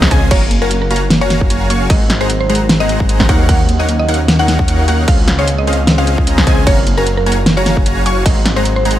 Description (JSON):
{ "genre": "future bass", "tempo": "151 BPM", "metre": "4/4", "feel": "swing 55% on 16ths, half-time", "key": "unclear", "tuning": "A4 = 443 Hz", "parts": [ { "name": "mallet-like synth pluck", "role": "melody", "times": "0.0-9.0 s", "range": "Bb4 to Ab5", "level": "-20 LUFS", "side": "equal", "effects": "chorus, sidechain pumping, dub echo" }, { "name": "airy breathy pad", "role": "sustained chords", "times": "0.1-9.0 s", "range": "Db3 to Gb5", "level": "-25 LUFS", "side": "left 1 dB", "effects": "none" }, { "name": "wide unison pluck", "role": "arpeggios", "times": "0.0-9.0 s", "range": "F5 to Db6", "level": "-26 LUFS", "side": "equal", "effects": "vintage 12-bit sampler grit, sidechain pumping, tape echo" }, { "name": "dense compressed supersaw", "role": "riff", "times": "0.0-9.0 s", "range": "Ab3 to Db6", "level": "-19 LUFS", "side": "equal", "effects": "sidechain pumping" }, { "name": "wide detuned saw bass", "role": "bass", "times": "0.0-9.0 s", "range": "Gb1 to Eb2", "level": "-16 LUFS", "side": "equal", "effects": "chorus, tube saturation, sidechain pumping" }, { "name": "electronic kick drum", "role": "drums", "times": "0.0-8.3 s", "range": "none", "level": "-13 LUFS", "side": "equal", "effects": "overdrive" }, { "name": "pop drum kit", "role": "drums", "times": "0.0-9.0 s", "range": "crash cymbal, hi-hat, snare drum", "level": "-17 LUFS", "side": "equal", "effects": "none" }, { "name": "Celtic harp", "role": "arpeggios", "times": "0.3-9.0 s", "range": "Bb3 to C5", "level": "-24 LUFS", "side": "right 2 dB", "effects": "sidechain pumping, tape echo" } ], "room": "little or no reverb", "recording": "none", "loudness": "-10 LUFS", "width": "side -12 dB against mid", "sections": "0.0-9.0 A section", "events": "none", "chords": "0.3 Gbmaj7; 1.9 Ab7; 3.3 Ebm9; 5.1 Dbmaj7; 6.7 Gbmaj7; 8.3 Ab7", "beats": "| 0.31 0.71 1.10 1.50 | 1.90 2.30 2.69 3.09 | 3.49 3.89 4.28 4.68 | 5.08 5.48 5.87 6.27 | 6.67 7.07 7.46 7.86 | 8.26 8.65" }